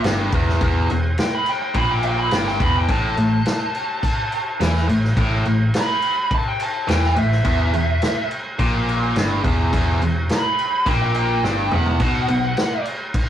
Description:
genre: blues rock power trio and southern rock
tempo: 105 BPM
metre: 4/4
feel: straight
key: unclear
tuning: A4 = 441 Hz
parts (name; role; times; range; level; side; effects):
- tight distorted guitar; riff; 0.0-12.5 s; E2 to E3; -21 LUFS; equal; distortion
- hollow-body short-scale picked electric bass; bass; 0.0-12.6 s; E1 to E2; -22 LUFS; equal; none
- vintage drum kit; drums; 0.0-13.3 s; crash cymbal, kick drum, snare drum, toms; -22 LUFS; equal; none
- nasal lead guitar with a parked wah; melody; 1.2-12.8 s; E5 to B5; -22 LUFS; equal; overdrive
room: moderate studio reverb, RT60 0.5 s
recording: rough rehearsal-room recording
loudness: -17 LUFS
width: side -10 dB against mid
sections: 0.0-13.3 A section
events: lead electric guitar solo 0.0-13.3; drum fill 11.4-12.0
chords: 0.0 E5; 2.9 A5; 7.5 E5; 12.0 B5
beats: 0.05 | 0.62 1.19 1.76 2.33 | 2.90 3.47 4.04 4.61 | 5.17 5.74 6.31 6.88 | 7.45 8.02 8.59 9.16 | 9.73 10.30 10.87 11.44 | 12.01 12.58 13.15

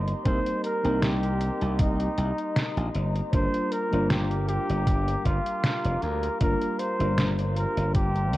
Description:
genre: vaporwave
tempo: 78 BPM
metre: 4/4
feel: swing 54% on 16ths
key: C minor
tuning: A4 = 436 Hz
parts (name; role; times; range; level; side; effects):
- mellow FM electric piano; accompaniment; 0.0-8.4 s; G3 to Bb4; -31 LUFS; equal; lush chorus, cassette tape, analog delay
- warbly tape-like pad; sustained chords; 0.0-8.4 s; G4 to D6; -38 LUFS; equal; chorus, built-in reverb
- slap bass; bass; 0.0-8.4 s; F1 to D2; -27 LUFS; equal; none
- detuned 8-bit digital drum machine; drums; 0.1-8.4 s; hi-hat, snare drum; -29 LUFS; equal; none
- breathy flugelhorn; melody; 0.3-8.4 s; Eb4 to C5; -30 LUFS; equal; tape echo
- electronic kick drum; drums; 0.3-8.1 s; none; -25 LUFS; equal; none
room: light reverb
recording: echo-heavy mix, cassette tape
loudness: -23 LUFS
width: side -16 dB against mid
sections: 0.0-8.4 A section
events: none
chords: 0.0 Cm7; 3.3 Gm7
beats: | 0.26 1.02 1.79 2.56 | 3.33 4.10 4.87 5.64 | 6.41 7.18 7.95

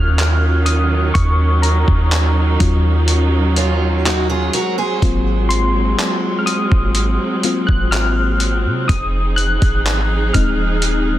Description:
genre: contemporary R&B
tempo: 62 BPM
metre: 4/4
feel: straight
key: Eb dorian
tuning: A4 = 440 Hz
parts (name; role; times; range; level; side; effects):
- FM electric piano; accompaniment; 0.0-11.2 s; Gb3 to Ab6; -20 LUFS; left 4 dB; chorus
- warm studio string section; sustained chords; 0.0-11.2 s; Eb3 to Ab4; -22 LUFS; right 4 dB; sidechain pumping
- clean 808-style bass; bass; 0.0-11.2 s; Eb1 to C3; -16 LUFS; equal; none
- dusty soul sampler-style drum kit; drums; 0.2-11.0 s; handclaps, hi-hat, kick drum; -19 LUFS; equal; overdrive
- picked steel-string acoustic guitar; arpeggios; 3.6-6.2 s; Db4 to C5; -22 LUFS; right 2 dB; ping-pong delay
room: little or no reverb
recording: dense, heavily limited modern master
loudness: -14 LUFS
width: side -13 dB against mid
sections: 0.0-11.2 A section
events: FM electric piano solo 0.0-11.2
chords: 0.0 Ebm9; 4.5 Ab13; 8.9 Fm7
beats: 0.18 | 1.15 2.12 3.09 4.05 | 5.02 5.99 6.96 7.92 | 8.89 9.86 10.83

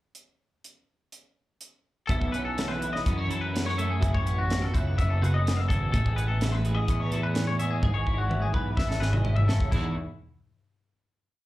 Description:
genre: math rock and midwest emo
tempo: 126 BPM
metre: 4/4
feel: straight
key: E major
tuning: A4 = 440 Hz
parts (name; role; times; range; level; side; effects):
- crisp fusion drum kit; drums; 0.1-9.8 s; crash cymbal, hi-hat, kick drum, snare drum, toms; -29 LUFS; equal; none
- twelve-string electric guitar; accompaniment; 2.1-10.0 s; E2 to B4; -28 LUFS; right 1 dB; ensemble chorus
- twangy electric guitar; arpeggios; 2.1-9.9 s; E4 to E5; -32 LUFS; left 4 dB; slapback echo
- fuzz fingered electric bass; bass; 2.1-9.9 s; F#1 to F#2; -30 LUFS; equal; overdrive
room: light reverb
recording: live gig heard through the venue's PA, club reverb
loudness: -24 LUFS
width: side -16 dB against mid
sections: 0.1-2.1 pickup bar; 2.1-9.7 A section; 9.7-11.5 final chord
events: drum fill 7.8-9.7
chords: 0.1 N.C.; 2.1 B9sus4; 4.0 F#m11; 5.9 Amaj7sus2; 7.8 E6/G#; 9.7 E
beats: | 0.14 0.63 1.12 1.60 | 2.08 2.57 3.05 3.53 | 4.01 4.49 4.97 5.45 | 5.92 6.40 6.87 7.34 | 7.82 8.29 8.77 9.24 | 9.72

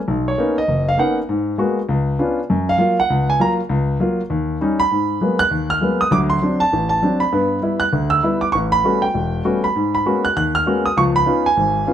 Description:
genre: jazz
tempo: 198 BPM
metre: 4/4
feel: swing 63% on 8ths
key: unclear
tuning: A4 = 440 Hz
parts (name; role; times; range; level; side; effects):
- warm concert grand piano; solo; 0.1-11.9 s; E1 to F#6; -16 LUFS; equal; none
room: light reverb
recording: none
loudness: -16 LUFS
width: side -10 dB against mid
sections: 0.0-4.9 A section; 4.9-11.9 B section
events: grand piano solo 0.0-4.9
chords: 0.1 Bmaj9; 1.3 G#m9; 1.9 C#7b9; 2.5 F#maj7; 4.3 D#7; 4.9 G#m9; 6.1 D7; 7.3 G6; 8.5 A13; 9.7 G#m11; 11.0 C#9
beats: | 0.07 0.37 0.67 0.97 | 1.28 1.58 1.88 2.18 | 2.48 2.78 3.08 3.39 | 3.69 3.99 4.29 4.59 | 4.89 5.20 5.50 5.80 | 6.11 6.41 6.71 7.01 | 7.32 7.62 7.92 8.23 | 8.53 8.83 9.14 9.44 | 9.74 10.04 10.35 10.65 | 10.95 11.26 11.56 11.86

